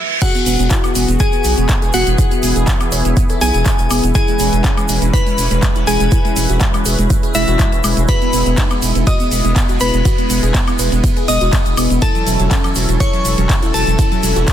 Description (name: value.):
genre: progressive house.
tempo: 122 BPM.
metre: 4/4.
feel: straight.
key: E major.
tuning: A4 = 440 Hz.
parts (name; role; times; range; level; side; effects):
glassy synth bell; melody; 0.2-14.4 s; E4 to D#6; -20 LUFS; left 3 dB; chorus, ping-pong delay.
filtered supersaw swell; sustained chords; 0.2-14.5 s; E3 to B4; -24 LUFS; equal; vintage 12-bit sampler grit, sidechain pumping.
glassy wavetable pluck; arpeggios; 0.2-14.5 s; F#3 to C#5; -21 LUFS; right 1 dB; chorus, sidechain pumping, ping-pong delay.
deep house drum kit; drums; 0.2-14.5 s; crash cymbal, handclaps, hi-hat, ride cymbal, woodblock; -22 LUFS; left 1 dB; sidechain pumping on hats, high-pass filter on hats, high-pass filter on snare, sidechain pumping on perc, high-pass filter on perc, sidechain pumping on cymbals, high-pass filter on cymbals, high-pass filter on room.
electronic kick drum; drums; 0.2-14.5 s; none; -16 LUFS; equal; none.
tube shaker; percussion; 0.2-14.5 s; none; -27 LUFS; right 6 dB; none.
round analog bass; bass; 0.5-14.5 s; E1 to B1; -17 LUFS; equal; sidechain pumping.
room: digital ambience.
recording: dense, heavily limited modern master.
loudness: -12 LUFS.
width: side -10 dB against mid.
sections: 0.2-14.5 A section.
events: stop 0.0; drop 0.2-14.5.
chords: 0.2 Eadd9; 4.2 C#m7/E; 8.1 B6/E; 12.0 F#m7/E.